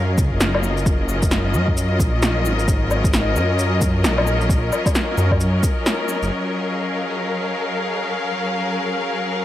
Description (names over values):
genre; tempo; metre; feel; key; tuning
future garage; 132 BPM; 4/4; swing 61% on 16ths; Eb minor; A4 = 441 Hz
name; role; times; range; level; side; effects
bright studio string section; sustained chords; 0.0-9.4 s; Gb3 to F5; -22 LUFS; left 2 dB; vintage 12-bit sampler grit, sidechain pumping
dark detuned saw bass; bass; 0.0-6.3 s; Gb1 to Gb2; -20 LUFS; equal; sidechain pumping
electronic cabasa, shaker, snare drum and woodblock; drums; 0.2-6.3 s; none; -22 LUFS; equal; small room ambience, gated reverb
electronic kick drum; drums; 0.2-5.7 s; none; -20 LUFS; equal; small room ambience
room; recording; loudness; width
light reverb; bright 1980s-style digital production, vinyl crackle; -17 LUFS; side -13 dB against mid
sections
0.0-6.3 A section; 6.3-9.4 B section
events
none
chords
0.0 Ebm9/Gb